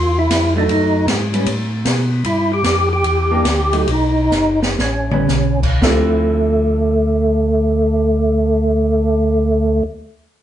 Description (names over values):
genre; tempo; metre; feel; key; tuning
soul jazz organ trio; 108-154 BPM; 4/4; swing 66% on 8ths; D dorian; A4 = 442 Hz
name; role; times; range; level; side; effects
percussive tonewheel organ; melody; 0.0-9.8 s; A3 to G4; -16 LUFS; right 1 dB; slow rotary speaker, overdrive, chorus vibrato
tonewheel organ; bass; 0.0-9.8 s; F#1 to B2; -19 LUFS; left 1 dB; slow rotary speaker
open jazz drum kit; drums; 0.3-6.0 s; crash cymbal, hi-hat, kick drum, ride cymbal, snare drum, toms; -20 LUFS; equal; none
vintage hollow-body jazz guitar; accompaniment; 0.6-9.9 s; D3 to G4; -22 LUFS; right 2 dB; none
room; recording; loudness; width
wet studio reverb, RT60 0.7 s; band playing live in one room, nothing above 10.9 kHz; -14 LUFS; side -11 dB against mid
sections
0.0-5.8 A section; 5.8-10.3 B section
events
slowing down 2.2-5.8; drum fill 4.3-5.3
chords
0.0 Dmadd9/E (rootless); 0.7 B7; 1.5 Asus2; 2.2 Fsus2; 3.0 Em7b5; 3.9 B; 4.8 A9; 5.8 Dm9